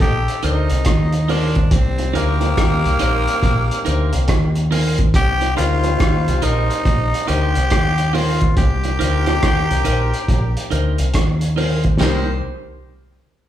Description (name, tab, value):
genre	roots reggae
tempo	70 BPM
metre	4/4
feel	swing 64% on 16ths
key	C dorian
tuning	A4 = 440 Hz
part	growling tenor saxophone	melody	0.0-12.4 s	Bb3 to C5	-22 LUFS	left 1 dB	none
part	mellow horn section	second line	0.0-12.3 s	Eb3 to C5	-30 LUFS	left 4 dB	none
part	deep dub fingered electric bass	bass	0.0-12.4 s	Bb1 to Eb2	-19 LUFS	equal	none
part	cloth-damped thuddy drum kit	drums	0.0-12.3 s	hi-hat, kick drum, rim click, snare drum, splash cymbal	-20 LUFS	equal	none
part	clean electric guitar	accompaniment	0.4-12.3 s	Eb4 to C5	-26 LUFS	right 2 dB	none
part	bongos	percussion	0.9-12.4 s	none	-27 LUFS	right 4 dB	none
room	moderate large studio reverb, RT60 1.3 s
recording	band playing live in one room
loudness	-15 LUFS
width	side -11 dB against mid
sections	0.0-12.0 A section; 12.0-13.5 B section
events	none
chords	0.0 Cm7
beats	0.00 0.86 | 1.71 2.57 3.43 4.29 | 5.14 6.00 6.86 7.71 | 8.57 9.43 10.28 11.14 | 12.00